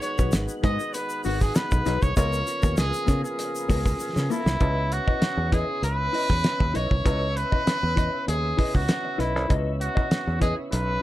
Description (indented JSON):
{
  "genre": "funk",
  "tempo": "98 BPM",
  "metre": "4/4",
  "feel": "straight",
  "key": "unclear",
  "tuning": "A4 = 439 Hz",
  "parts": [
    { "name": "bright trumpet", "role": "melody", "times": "0.0-11.0 s", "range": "E4 to D#5", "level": "-28 LUFS", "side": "equal", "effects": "none" },
    { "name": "mellow electric guitar", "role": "accompaniment", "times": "0.0-10.7 s", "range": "B3 to D#5", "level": "-32 LUFS", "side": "left 4 dB", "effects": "none" },
    { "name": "tonewheel organ", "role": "sustained chords", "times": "0.0-11.0 s", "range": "C#3 to F#4", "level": "-34 LUFS", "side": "right 1 dB", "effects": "slow rotary speaker, chorus vibrato" },
    { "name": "cloth-damped thuddy drum kit", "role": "drums", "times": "0.0-10.9 s", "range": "hi-hat, kick drum, snare drum", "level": "-24 LUFS", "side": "equal", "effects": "none" },
    { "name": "tube shaker", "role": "percussion", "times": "0.0-4.6 s", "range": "none", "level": "-41 LUFS", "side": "left 5 dB", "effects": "none" },
    { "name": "fingered electric bass", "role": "bass", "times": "0.2-11.0 s", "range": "G#1 to C#3", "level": "-26 LUFS", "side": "equal", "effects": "none" }
  ],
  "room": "little or no reverb",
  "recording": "none",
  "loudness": "-22 LUFS",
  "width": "side -15 dB against mid",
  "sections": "0.0-4.6 A section; 4.6-11.0 B section",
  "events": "drum fill 4.0-4.6",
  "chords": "0.0 G#m7; 2.2 C#13; 4.6 C#m9",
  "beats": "0.34 0.95 1.56 | 2.17 2.78 3.39 4.00 | 4.61 5.22 5.83 6.45 | 7.06 7.67 8.28 8.89 | 9.50 10.11 10.72"
}